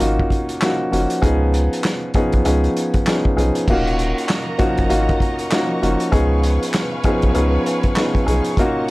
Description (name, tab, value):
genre	hip hop, boom-bap hip-hop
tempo	98 BPM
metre	4/4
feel	swing 61% on 16ths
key	unclear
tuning	A4 = 440 Hz
part	dark upright piano	accompaniment	0.0-8.9 s	F3 to Ab4	-19 LUFS	equal	cassette tape
part	saturated sub bass	bass	0.0-8.4 s	Eb1 to Db2	-19 LUFS	equal	transformer saturation
part	vintage drum kit	drums	0.0-8.9 s	crash cymbal, handclaps, hi-hat, kick drum, snare drum	-21 LUFS	equal	none
part	warm studio string section	sustained chords	3.7-8.9 s	Bb4 to Db6	-28 LUFS	equal	none
room	light reverb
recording	vinyl crackle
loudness	-16 LUFS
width	side -20 dB against mid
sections	0.0-3.7 A section; 3.7-8.9 A section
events	none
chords	0.0 Ebm7; 1.2 Db7; 3.7 Ebm7; 6.1 Db7